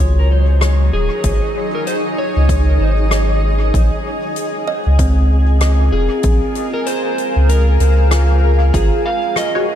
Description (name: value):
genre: ambient dub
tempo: 96 BPM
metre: 4/4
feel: swing 60% on 16ths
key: Bb minor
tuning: A4 = 439 Hz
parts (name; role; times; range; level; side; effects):
- electric slide guitar; melody; 0.0-9.8 s; Ab4 to F5; -22 LUFS; equal; dub echo
- granular cloud pad; sustained chords; 0.0-9.8 s; Gb3 to F5; -21 LUFS; left 1 dB; built-in reverb
- kalimba; arpeggios; 0.0-9.8 s; C4 to C6; -26 LUFS; right 4 dB; dub echo
- soft dub sub bass; bass; 0.0-8.9 s; Eb1 to Db2; -12 LUFS; equal; none
- soft-mallet drum kit; drums; 0.6-9.5 s; hi-hat, rim click; -26 LUFS; left 2 dB; studio reverb, dub echo
- electronic kick drum; drums; 1.2-8.9 s; none; -19 LUFS; equal; overdrive, studio reverb
- filtered dub chord stab; stabs; 9.6-9.7 s; Ab3 to Db5; -17 LUFS; left 4 dB; phaser, analog chorus
room: light reverb, small room ambience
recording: none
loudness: -13 LUFS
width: side -10 dB against mid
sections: 0.0-8.7 A section; 8.7-9.8 B section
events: kick drops out 7.5-8.7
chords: 0.0 Ab7sus4; 3.7 Bbm7; 8.7 Ab7sus4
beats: 0.62 | 1.24 1.87 2.49 3.12 | 3.74 4.37 4.99 5.62 | 6.24 6.87 7.49 8.12 | 8.74 9.37